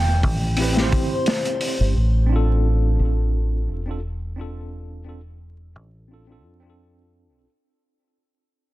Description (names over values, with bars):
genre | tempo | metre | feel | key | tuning
trip hop | 87 BPM | 4/4 | swing 55% on 16ths | unclear | A4 = 442 Hz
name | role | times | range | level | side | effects
pure breathy sine lead | melody | 0.0-1.8 s | C5 to G5 | -29 LUFS | left 1 dB | chorus, phaser, tape echo
deep dub fingered electric bass | bass | 0.0-7.5 s | E1 to F2 | -21 LUFS | equal | none
crunchy breakbeat drum kit | drums | 0.2-1.8 s | hi-hat, kick drum, snare drum | -22 LUFS | equal | none
tine electric piano | accompaniment | 0.6-7.5 s | C4 to C5 | -28 LUFS | equal | medium stereo tremolo, harmonic tremolo, tape echo
room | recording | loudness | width
small room ambience | dense, heavily limited modern master, vinyl crackle | -18 LUFS | side -17 dB against mid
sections
0.0-7.5 A section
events
fade-out 0.0-7.5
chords
0.0 Am7; 2.0 Dm9